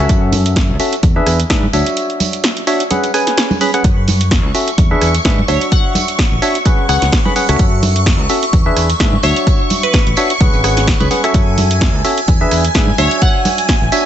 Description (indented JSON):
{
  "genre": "piano house",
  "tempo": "128 BPM",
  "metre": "4/4",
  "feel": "swing 56% on 16ths",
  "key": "F# minor",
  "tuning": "A4 = 440 Hz",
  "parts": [
    { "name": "percussive organ stab", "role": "riff", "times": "0.0-14.1 s", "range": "C#4 to B5", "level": "-17 LUFS", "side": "equal", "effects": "chorus, sidechain pumping, ping-pong delay" },
    { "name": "modern bright fingered electric bass", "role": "bass", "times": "0.0-13.9 s", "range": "G#1 to G#2", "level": "-16 LUFS", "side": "equal", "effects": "sidechain pumping" },
    { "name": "electronic kick drum", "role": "drums", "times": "0.1-13.8 s", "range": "none", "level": "-14 LUFS", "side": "equal", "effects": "none" },
    { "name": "punchy analog drum machine", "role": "drums", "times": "0.1-14.0 s", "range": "hi-hat, rim click, snare drum", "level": "-19 LUFS", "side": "right 1 dB", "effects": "overdrive" },
    { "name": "tambourine and congas", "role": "percussion", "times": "0.1-14.0 s", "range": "none", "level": "-22 LUFS", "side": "right 3 dB", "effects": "none" },
    { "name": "string machine, violins", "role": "sustained chords", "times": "3.8-14.1 s", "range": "G#5 to C#6", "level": "-21 LUFS", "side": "equal", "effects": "ensemble chorus, sidechain pumping" },
    { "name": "glassy wavetable pluck", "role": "melody", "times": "5.5-13.7 s", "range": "B4 to F#5", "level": "-21 LUFS", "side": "left 2 dB", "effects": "chorus, cassette tape, ping-pong delay" }
  ],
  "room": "light reverb",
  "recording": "nothing above 8.0 kHz",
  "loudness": "-11 LUFS",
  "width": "side -10 dB against mid",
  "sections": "0.0-14.1 A section",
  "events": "none",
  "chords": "0.1 F#m7; 1.0 E7; 1.7 Dmaj9; 2.9 C#7sus4; 3.8 F#m7; 4.8 E7; 5.5 Dmaj9; 6.7 C#7sus4; 7.6 F#m7; 8.5 E7; 9.2 Dmaj9; 10.4 C#7sus4; 11.3 F#m7; 12.3 E7; 13.0 Dmaj9",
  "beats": "| 0.09 0.56 1.03 1.50 | 1.97 2.44 2.91 3.37 | 3.84 4.31 4.78 5.25 | 5.72 6.19 6.66 7.12 | 7.59 8.06 8.53 9.00 | 9.47 9.94 10.41 10.87 | 11.34 11.81 12.28 12.75 | 13.22 13.69"
}